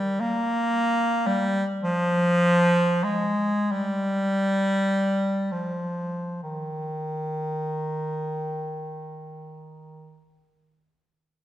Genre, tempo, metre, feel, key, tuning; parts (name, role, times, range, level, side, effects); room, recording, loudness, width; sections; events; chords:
classical, free, expressive piece for unaccompanied bass clarinet; 16-40 BPM (dotted quarters); 6/8; rubato; Eb major; A4 = 440 Hz
warm bass clarinet; solo; 0.0-10.3 s; Eb3 to Bb3; -23 LUFS; equal
wet recital hall reverb, RT60 1.4 s; -22 LUFS; side -13 dB against mid
0.0-6.4 A section; 6.4-10.7 B section
slowing down 0.0-6.4